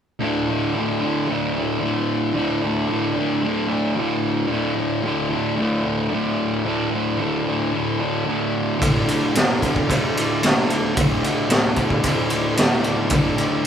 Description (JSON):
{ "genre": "garage rock duo or trio", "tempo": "112 BPM", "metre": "4/4", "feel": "straight", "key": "unclear", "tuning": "A4 = 441 Hz", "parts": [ { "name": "fuzz guitar", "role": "riff", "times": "0.2-13.7 s", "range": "D2 to D3", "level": "-20 LUFS", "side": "equal", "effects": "distortion" }, { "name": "raw garage drum kit", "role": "drums", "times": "8.8-13.7 s", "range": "kick drum, ride cymbal, snare drum", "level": "-19 LUFS", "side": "equal", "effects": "none" } ], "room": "light reverb", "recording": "band playing live in one room", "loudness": "-18 LUFS", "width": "side -8 dB against mid", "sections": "0.2-13.7 A section", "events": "none", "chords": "0.2 D5" }